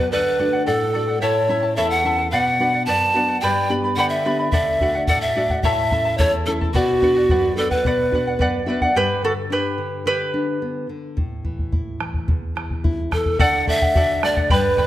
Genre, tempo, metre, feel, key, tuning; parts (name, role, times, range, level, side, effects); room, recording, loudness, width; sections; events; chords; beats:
andean folk, Andean ensemble; 108 BPM; 2/4; straight; A4 = 443 Hz
breathy pan flute; melody; 0.0-8.4, 13.1-14.9 s; F#4 to A5; -19 LUFS; equal
charango; accompaniment; 0.0-10.9, 13.4-14.9 s; E4 to B5; -23 LUFS; equal
nylon-string guitar; accompaniment; 0.0-14.9 s; E2 to E5; -25 LUFS; left 1 dB
bombo; percussion; 4.5-8.9, 11.2-14.9 s; -22 LUFS; equal
moderate recital hall reverb, RT60 1.4 s; -17 LUFS; side -13 dB against mid
0.1-9.0 A section; 9.0-13.4 B section; 13.4-14.9 C section
nylon-string guitar fill 8.1-9.0; charango solo 9.0-13.4
0.1 D; 1.2 A; 2.3 Bm; 3.4 G; 4.5 D; 5.6 A; 6.7 Bm; 9.0 G; 11.2 A5; 13.4 D
| 0.12 0.67 | 1.22 1.77 | 2.32 2.87 | 3.42 3.97 | 4.53 5.08 | 5.63 6.18 | 6.74 7.29 | 7.84 8.40 | 8.95 9.51 | 10.06 10.62 | 11.18 11.73 | 12.29 12.84 | 13.40 13.95 | 14.51